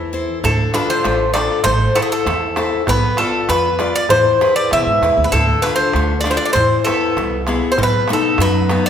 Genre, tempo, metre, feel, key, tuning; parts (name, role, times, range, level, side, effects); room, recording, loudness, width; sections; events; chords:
greek folk, Greek bouzouki band; 98 BPM; 2/4; straight; A4 = 440 Hz
Greek bouzouki; melody; 0.0-8.9 s; G#4 to E5; -16 LUFS; equal
picked steel-string acoustic guitar; accompaniment; 0.0-8.9 s; B2 to D5; -20 LUFS; left 4 dB
upright bass; bass; 0.0-8.8 s; A1 to B2; -22 LUFS; right 1 dB
darbuka; percussion; 0.4-8.9 s; -22 LUFS; right 2 dB
wet recital hall reverb, RT60 1.4 s; recorded in a church or concert hall; -13 LUFS; side -8 dB against mid
0.4-8.9 A section
0.4 Dm; 1.7 Am; 2.9 Bdim; 4.1 E; 5.3 Dm; 6.5 E; 7.8 B7